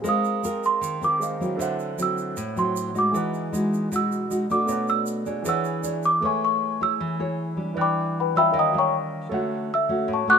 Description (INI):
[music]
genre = bossa nova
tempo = 156 BPM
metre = 4/4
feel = straight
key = A major from 6.2 s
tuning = A4 = 440 Hz
[part]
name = nylon-string guitar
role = accompaniment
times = 0.0-10.4 s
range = A2 to C#5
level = -26 LUFS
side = equal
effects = none
[part]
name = warm concert grand piano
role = accompaniment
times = 0.0-10.4 s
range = E3 to F#6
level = -32 LUFS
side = right 2 dB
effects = none
[part]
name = egg shaker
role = percussion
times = 0.0-6.2 s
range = none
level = -40 LUFS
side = right 7 dB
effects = none
[part]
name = small celesta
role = melody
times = 0.1-10.4 s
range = B4 to F#6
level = -22 LUFS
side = equal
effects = none
[sound]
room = moderate echo chamber reverb, RT60 1.9 s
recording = minimal, uncompressed stereo recording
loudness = -22 LUFS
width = side -6 dB against mid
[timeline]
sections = 0.0-6.2 A section; 6.2-10.4 A section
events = celesta solo 0.0-10.4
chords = 0.1 G#69; 1.6 D9; 3.1 Emaj9; 4.7 Bm7; 5.5 E13; 6.2 Amaj7; 7.8 Em9; 8.5 D#9; 9.3 Dmaj7